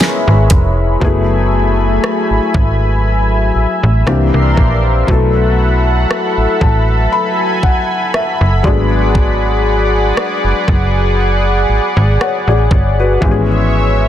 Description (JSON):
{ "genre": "contemporary R&B", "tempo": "59 BPM", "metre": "4/4", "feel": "swing 54% on 16ths", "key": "F# minor", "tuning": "A4 = 440 Hz", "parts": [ { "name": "felt-muted upright piano", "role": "accompaniment", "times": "0.0-14.1 s", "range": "E3 to B5", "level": "-17 LUFS", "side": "left 4 dB", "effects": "none" }, { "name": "lush unison pad", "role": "sustained chords", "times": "0.0-14.1 s", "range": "A3 to C6", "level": "-17 LUFS", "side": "equal", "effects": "chorus" }, { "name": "smooth R&B drum kit", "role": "drums", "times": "0.0-13.5 s", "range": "hi-hat, kick drum, rim click, snare drum", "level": "-15 LUFS", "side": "equal", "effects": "none" }, { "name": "slap-like FM bass", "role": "bass", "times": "0.3-14.1 s", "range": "E#1 to C2", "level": "-13 LUFS", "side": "equal", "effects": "none" } ], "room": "digital ambience", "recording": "dense, heavily limited modern master", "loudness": "-10 LUFS", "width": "side -11 dB against mid", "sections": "0.0-1.0 A section; 1.0-14.1 B section", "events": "felt piano fill 6.1-9.2", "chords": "0.0 C#m7/G#; 1.0 F#m11; 4.1 C9; 5.1 B7sus4; 8.6 G#m7b5; 13.2 C#m7/G#", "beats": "0.00 | 1.01 2.03 3.05 4.07 | 5.08 6.10 7.12 8.13 | 9.15 10.17 11.18 12.20 | 13.22" }